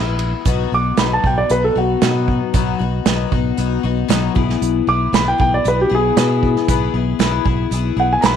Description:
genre	folk rock and heartland rock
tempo	116 BPM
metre	4/4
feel	straight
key	unclear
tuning	A4 = 440 Hz
part	picked twelve-string acoustic guitar	accompaniment	0.0-8.4 s	B2 to G#4	-21 LUFS	left 14 dB	none
part	fingered electric bass	bass	0.0-8.4 s	A#1 to B2	-20 LUFS	equal	none
part	unplugged drum kit	drums	0.2-8.4 s	hi-hat, kick drum, ride cymbal, snare drum	-19 LUFS	right 4 dB	none
part	dark grand piano	melody	0.7-8.4 s	F#4 to D6	-18 LUFS	right 1 dB	none
room	light reverb, small room ambience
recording	1960s-style stereo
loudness	-14 LUFS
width	side -8 dB against mid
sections	0.5-8.4 A section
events	grand piano solo 0.5-8.4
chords	0.5 B; 4.4 E/B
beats	| 0.46 0.98 1.50 2.02 | 2.54 3.06 3.58 4.10 | 4.62 5.13 5.65 6.17 | 6.69 7.20 7.72 8.23

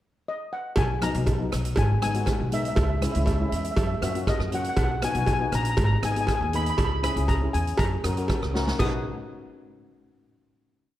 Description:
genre	calypso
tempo	120 BPM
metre	4/4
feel	straight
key	B major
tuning	A4 = 440 Hz
part	steel pan	melody	0.3-9.0 s	D#5 to D#6	-30 LUFS	left 2 dB	none
part	upright bass	bass	0.8-9.0 s	G#1 to F#2	-27 LUFS	equal	none
part	swinging big-band drum kit	drums	0.8-8.9 s	crash cymbal, hi-hat, kick drum, rim click, snare drum	-28 LUFS	equal	none
part	cowbell	percussion	0.8-9.0 s	none	-32 LUFS	right 2 dB	none
part	steel pan	accompaniment	1.0-9.0 s	F#3 to B4	-31 LUFS	left 3 dB	none
room	light reverb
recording	dark, warm production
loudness	-22 LUFS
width	side -14 dB against mid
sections	0.0-0.8 pickup bar; 0.8-8.8 verse; 8.8-10.8 final chord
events	drum fill 8.5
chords	0.0 N.C.; 0.8 Bmaj7; 1.8 G#m7; 2.8 C#m; 3.8 F#; 4.8 Bmaj7; 5.8 G#m; 6.8 C#m; 7.8 F#; 8.8 B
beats	0.26 | 0.77 1.27 1.77 2.27 | 2.77 3.27 3.77 4.27 | 4.77 5.28 5.78 6.28 | 6.78 7.29 7.79 8.29 | 8.80

